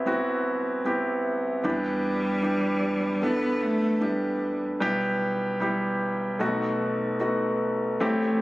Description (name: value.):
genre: pop.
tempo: 75 BPM.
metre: 4/4.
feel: straight.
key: E minor.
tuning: A4 = 442 Hz.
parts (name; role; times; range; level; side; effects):
clear concert grand piano; accompaniment; 0.0-8.4 s; A1 to A4; -24 LUFS; equal; none.
clear cello; melody; 1.7-4.6 s; G3 to B3; -28 LUFS; equal; none.
shimmering ambient pad; sustained chords; 8.4 s; A3 to C5; -32 LUFS; equal; none.
room: moderate plate reverb, RT60 2.5 s.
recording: recorded on a phone in the room, studio reverb, compression.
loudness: -24 LUFS.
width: side -18 dB against mid.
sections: 0.0-8.4 A section.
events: none.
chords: 0.0 Cmaj7; 1.6 Em7; 4.8 Em/B; 6.4 B7.